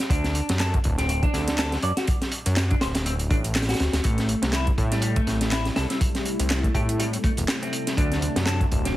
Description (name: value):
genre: breakbeat, breaks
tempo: 122 BPM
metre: 4/4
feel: swing 57% on 16ths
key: unclear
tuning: A4 = 442 Hz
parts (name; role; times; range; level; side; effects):
- semi-hollow electric guitar; riff; 0.0-8.9 s; G3 to D5; -30 LUFS; left 1 dB; overdrive, tape echo
- crunchy breakbeat drum kit; drums; 0.0-9.0 s; hi-hat, kick drum, snare drum; -24 LUFS; equal; none
- garage drum kit; drums; 0.0-8.9 s; handclaps, hi-hat; -32 LUFS; right 1 dB; overdrive
- fat analog bass; bass; 0.1-9.0 s; D1 to A2; -25 LUFS; equal; none
- phased analog pad; sustained chords; 4.0-9.0 s; C3 to E4; -32 LUFS; left 1 dB; phaser, chorus, sidechain pumping
room: light reverb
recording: heavily compressed radio sound, multiband compression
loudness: -21 LUFS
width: side -15 dB against mid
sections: 0.0-9.0 A section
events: none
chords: 0.1 D; 4.0 Am7; 8.0 D7